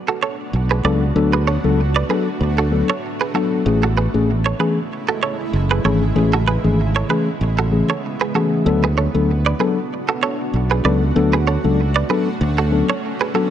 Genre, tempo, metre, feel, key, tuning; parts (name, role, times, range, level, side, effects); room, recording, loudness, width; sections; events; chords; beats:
afrobeats; 96 BPM; 4/4; swing 55% on 16ths; A4 = 441 Hz
granular cloud pad; sustained chords; 0.0-13.5 s; C#3 to F#4; -26 LUFS; right 1 dB; built-in reverb
direct-recorded clean electric guitar; riff; 0.1-13.5 s; F#4 to D5; -22 LUFS; right 7 dB; digital delay
fingered electric bass; bass; 0.5-12.8 s; F#1 to D2; -18 LUFS; right 1 dB
mellow tine electric piano; accompaniment; 0.8-13.5 s; E3 to A4; -20 LUFS; left 4 dB
light reverb; -16 LUFS; side -10 dB against mid
0.0-13.5 A section
0.0 D6; 3.7 Amaj7; 8.7 D6
0.53 | 1.16 1.78 2.41 3.03 | 3.66 4.28 4.91 5.53 | 6.16 6.78 7.41 8.03 | 8.66 9.28 9.91 10.53 | 11.16 11.78 12.41 13.03